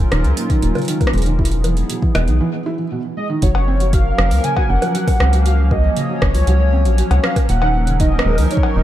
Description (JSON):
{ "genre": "IDM", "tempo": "118 BPM", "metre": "4/4", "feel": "straight", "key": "Gb major", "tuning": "A4 = 440 Hz", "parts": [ { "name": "hollow soft pad", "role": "sustained chords", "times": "0.0-8.8 s", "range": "F3 to Db5", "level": "-24 LUFS", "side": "left 1 dB", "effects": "chorus, sidechain pumping" }, { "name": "rubbery square bass", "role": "bass", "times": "0.0-8.8 s", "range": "Eb1 to Db2", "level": "-15 LUFS", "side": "equal", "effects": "none" }, { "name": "felt-muted upright piano", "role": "arpeggios", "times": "0.1-8.8 s", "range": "Bb2 to Gb4", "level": "-23 LUFS", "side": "right 2 dB", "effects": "vintage 12-bit sampler grit, tape echo" }, { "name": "booming analog drum machine", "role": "drums", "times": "0.1-8.7 s", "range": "bongos, cowbell, hi-hat, rim click", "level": "-24 LUFS", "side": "equal", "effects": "overdrive" }, { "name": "electronic kick drum", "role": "drums", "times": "0.5-8.7 s", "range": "none", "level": "-18 LUFS", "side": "equal", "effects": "none" }, { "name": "warm velvety synth lead", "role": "melody", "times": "3.2-8.8 s", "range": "Db5 to Ab5", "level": "-23 LUFS", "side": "right 1 dB", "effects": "chorus, diffuse ambient delay" } ], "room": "light reverb, digital ambience", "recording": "none", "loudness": "-14 LUFS", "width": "side -13 dB against mid", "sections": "0.0-3.4 A section; 3.4-8.8 B section", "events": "filter sweep on felt piano 0.0-3.4; break 2.4-3.4", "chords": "0.0 Ebm9; 1.4 Emaj9; 3.4 Gbmaj7; 7.5 Ebm9" }